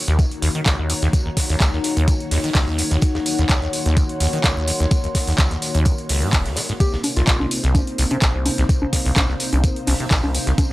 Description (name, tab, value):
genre	acid house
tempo	127 BPM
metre	4/4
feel	swing 54% on 16ths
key	unclear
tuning	A4 = 440 Hz
part	string machine, full ensemble	sustained chords	0.0-10.7 s	C3 to Db5	-29 LUFS	equal	ensemble chorus, sidechain pumping
part	warbly tape-like pad	texture	0.1-10.7 s	Eb4 to C6	-28 LUFS	left 3 dB	chorus, built-in reverb, phaser, sidechain pumping
part	acid bass, saw	riff	0.1-10.7 s	Eb1 to Eb3	-21 LUFS	equal	lush chorus, sidechain pumping
part	big rock drum kit	drums	0.1-10.7 s	hi-hat, snare drum, tambourine	-32 LUFS	right 1 dB	high-pass filter on hats, high-pass filter on snare, high-pass filter on perc, high-pass filter on room
part	booming analog drum machine	drums	0.1-10.7 s	congas, handclaps, hi-hat	-23 LUFS	equal	none
part	electronic kick drum	drums	0.2-10.7 s	none	-18 LUFS	equal	overdrive
part	soft struck synth lead	melody	6.8-7.5 s	F4 to G4	-30 LUFS	left 2 dB	chorus, cassette tape, tape echo
room	light reverb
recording	dry, gritty hardware recording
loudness	-17 LUFS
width	side -18 dB against mid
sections	0.0-10.7 A section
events	none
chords	0.0 Ebm7; 6.8 Cm7